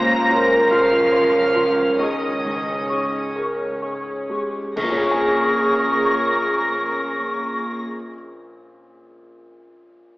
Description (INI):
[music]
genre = cinematic, emotional film score for orchestra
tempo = 41-50 BPM (dotted quarters)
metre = 6/8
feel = rubato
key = Bb minor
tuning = A4 = 439 Hz
[part]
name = rich studio violin section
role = melody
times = 0.0-7.8 s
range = Eb6 to Bb6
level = -28 LUFS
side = equal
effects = none
[part]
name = clear oboe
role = second line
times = 0.0-7.8 s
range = Bb4 to Bb5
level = -26 LUFS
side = equal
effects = none
[part]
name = dark clarinet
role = second line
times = 0.0-7.8 s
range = F4 to Bb4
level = -30 LUFS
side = left 1 dB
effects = none
[part]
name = rich studio violin section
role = second line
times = 0.0-7.8 s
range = Bb4 to Bb5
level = -29 LUFS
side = left 1 dB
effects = none
[part]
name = dark studio viola section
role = accompaniment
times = 0.0-7.8 s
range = Db4 to Db5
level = -27 LUFS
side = right 1 dB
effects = none
[part]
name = felt-muted upright piano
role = accompaniment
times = 0.0-10.2 s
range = Bb1 to Ab5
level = -28 LUFS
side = left 1 dB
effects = none
[part]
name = dark French horn section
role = sustained chords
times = 0.0-7.8 s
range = Db4 to Bb4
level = -22 LUFS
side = right 1 dB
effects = none
[part]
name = warm studio cello section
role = bass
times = 0.0-7.8 s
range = Eb3 to Bb3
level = -30 LUFS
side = equal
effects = none
[part]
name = warm symphonic double bass section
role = bass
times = 0.0-7.8 s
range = Bb1 to Db2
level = -34 LUFS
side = equal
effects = none
[part]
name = flute section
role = second line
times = 0.3-7.8 s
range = C6 to Db6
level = -26 LUFS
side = left 1 dB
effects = none
[part]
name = clash cymbals and concert bass drum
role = percussion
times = 4.8-6.6 s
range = none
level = -35 LUFS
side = left 1 dB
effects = none
[sound]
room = wet scoring stage reverb, RT60 1.7 s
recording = heard from further back in the room, AM radio sound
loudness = -17 LUFS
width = side -19 dB against mid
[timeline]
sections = 0.0-4.8 A section; 4.8-7.5 B section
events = slowing down 0.0-4.8; band accent 4.8-5.7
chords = 0.0 Bbmadd9/Db; 2.0 Dbsus2; 4.8 Bbm7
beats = 0.71 | 1.99 3.34 | 4.77 6.15